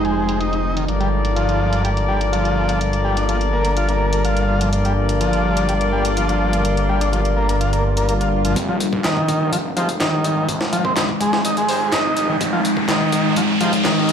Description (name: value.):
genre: breakbeat, breaks.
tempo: 125 BPM.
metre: 4/4.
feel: straight.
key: F dorian.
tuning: A4 = 440 Hz.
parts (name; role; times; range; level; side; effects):
deep dark ambient pad; sustained chords; 0.0-14.1 s; G3 to F4; -23 LUFS; left 2 dB; chorus, built-in reverb, sidechain pumping.
combo organ; riff; 0.0-14.1 s; Eb3 to F4; -22 LUFS; right 1 dB; low-pass filter, dub echo.
warm horn section; stabs; 0.0-13.7 s; Eb4 to D5; -24 LUFS; left 4 dB; low-pass filter, dub echo.
phased detuned saw bass; bass; 0.0-14.1 s; Eb1 to G1; -22 LUFS; equal; phaser, high-pass filter.
garage drum kit; drums; 0.0-13.9 s; handclaps, hi-hat; -28 LUFS; equal; low-pass filter on hats, small room ambience, low-pass filter on snare.
swell and riser; sound effects; 7.8-14.1 s; none; -26 LUFS; right 1 dB; none.
breakbeat sampler-style drum kit; drums; 8.6-14.1 s; hi-hat, kick drum, snare drum; -24 LUFS; equal; high-pass filter on hats, small room ambience, high-pass filter on kick, high-pass filter on snare.
room: light reverb.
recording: played on a big sound system in a bare room, large studio reverb.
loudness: -16 LUFS.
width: side -8 dB against mid.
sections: 0.0-8.6 A section; 8.6-14.1 B section.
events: swell 7.8-8.6; build-up 8.6-14.1; riser 8.6-14.1.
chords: 0.0 Fm7; 0.9 Gm7; 8.6 Fm7.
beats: 0.41 | 0.89 1.37 1.85 2.33 | 2.81 3.29 3.77 4.25 | 4.73 5.21 5.69 6.17 | 6.65 7.13 7.61 8.09 | 8.57 9.05 9.53 10.01 | 10.49 10.97 11.45 11.93 | 12.41 12.89 13.37 13.85.